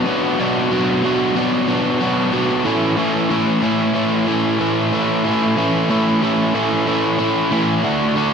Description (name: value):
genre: rock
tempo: 93 BPM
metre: 4/4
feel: straight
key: unclear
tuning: A4 = 443 Hz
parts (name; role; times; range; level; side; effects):
- crunchy overdriven guitar; solo; 0.0-8.3 s; A2 to F#4; -15 LUFS; equal; analog delay
room: wet lush hall reverb, RT60 2.1 s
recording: big arena sound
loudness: -15 LUFS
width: side -6 dB against mid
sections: 0.0-8.3 A section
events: none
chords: 0.0 Bm; 2.7 A